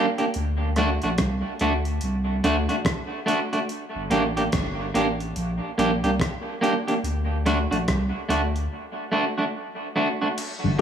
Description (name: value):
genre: dub reggae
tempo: 72 BPM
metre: 4/4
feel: swing 61% on 16ths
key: unclear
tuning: A4 = 438 Hz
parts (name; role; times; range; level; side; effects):
- electric guitar at the edge of break-up; accompaniment; 0.0-10.8 s; A3 to G4; -24 LUFS; right 1 dB; dub echo
- breakbeat sampler-style drum kit; drums; 0.2-10.6 s; crash cymbal, hi-hat, kick drum, rim click; -29 LUFS; equal; none
- warm sub bass; bass; 0.4-10.8 s; G1 to D2; -26 LUFS; equal; none
- mellow tonewheel organ; accompaniment; 10.6-10.8 s; G2 to D3; -21 LUFS; left 1 dB; chorus vibrato
room: moderate echo chamber reverb, RT60 2.7 s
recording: echo-heavy mix, small room ambience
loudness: -22 LUFS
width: side -8 dB against mid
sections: 0.0-10.4 A section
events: break 8.7-10.4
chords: 0.3 D; 3.7 Gm; 7.0 D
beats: | 0.35 1.18 2.02 2.85 | 3.69 4.53 5.36 6.20 | 7.03 7.87 8.71 9.54 | 10.38